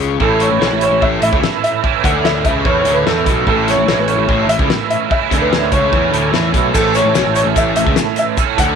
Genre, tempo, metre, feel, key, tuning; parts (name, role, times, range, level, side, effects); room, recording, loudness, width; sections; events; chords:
indie rock; 147 BPM; 4/4; straight; A major; A4 = 441 Hz
raw garage guitar; riff; 0.0-8.8 s; A2 to E3; -20 LUFS; left 14 dB; overdrive
fuzz picked electric bass; bass; 0.0-8.8 s; A1 to E2; -20 LUFS; right 1 dB; overdrive
loose indie drum kit; drums; 0.0-8.7 s; crash cymbal, hi-hat, kick drum, snare drum; -19 LUFS; left 2 dB
clear upright piano; melody; 0.2-8.8 s; A4 to F#5; -17 LUFS; left 1 dB; slapback echo
biting overdriven guitar; riff; 0.2-8.8 s; A2 to A4; -17 LUFS; right 14 dB; ensemble chorus
egg shaker; percussion; 6.7-8.7 s; -31 LUFS; left 18 dB
light reverb, small room ambience; 1960s-style stereo with parts hard left and right; -12 LUFS; side -6 dB against mid
0.0-6.7 A section; 6.7-8.8 A section
0.0 A